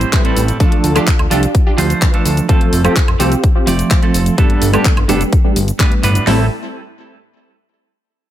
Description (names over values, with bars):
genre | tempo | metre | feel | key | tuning
EDM, festival progressive house | 127 BPM | 4/4 | straight | A minor | A4 = 441 Hz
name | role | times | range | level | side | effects
clean electric guitar | accompaniment | 0.0-6.5 s | G2 to D5 | -18 LUFS | right 4 dB | harmonic tremolo, sidechain pumping, digital delay
fat analog bass | bass | 0.0-6.5 s | F1 to D2 | -16 LUFS | left 1 dB | sidechain pumping
pop drum kit | drums | 0.0-6.3 s | handclaps, hi-hat, shaker, woodblock | -21 LUFS | equal | none
impact | sound effects | 0.0-0.6 s | none | barely audible | none | none
supersaw stab | riff | 0.1-6.4 s | G3 to C5 | -18 LUFS | equal | vintage 12-bit sampler grit, sidechain pumping, low-pass filter, digital delay
big-room dance drum kit | drums | 0.1-6.4 s | hi-hat, kick drum, snare drum | -13 LUFS | equal | overdrive
room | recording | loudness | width
little or no reverb | none | -11 LUFS | side -12 dB against mid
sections
0.0-6.3 A section; 6.3-8.2 B section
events
impact 0.0-0.6; filter sweep on supersaw synth 0.0-6.3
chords
0.0 Am7; 0.6 Dm; 2.5 F; 4.4 Gadd9; 6.3 Am7